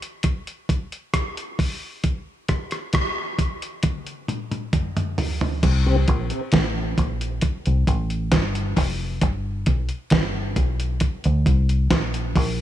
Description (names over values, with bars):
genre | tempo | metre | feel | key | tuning
dub reggae | 67 BPM | 4/4 | straight | unclear | A4 = 440 Hz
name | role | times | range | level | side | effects
dusty soul sampler-style drum kit | drums | 0.0-12.6 s | crash cymbal, hi-hat, kick drum, rim click, snare drum, toms | -22 LUFS | equal | none
deep dub fingered electric bass | bass | 5.6-12.6 s | F1 to D2 | -21 LUFS | equal | none
tonewheel organ | accompaniment | 5.9-6.0 s | C3 | -28 LUFS | left 2 dB | overdrive, chorus vibrato, high-pass filter, tape echo
room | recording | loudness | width
light reverb | echo-heavy mix | -20 LUFS | side -12 dB against mid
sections
0.0-5.6 A section; 5.6-12.6 B section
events
drum fill 3.8-5.6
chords
0.0 N.C.; 5.6 C5; 9.2 G; 11.0 Bbadd9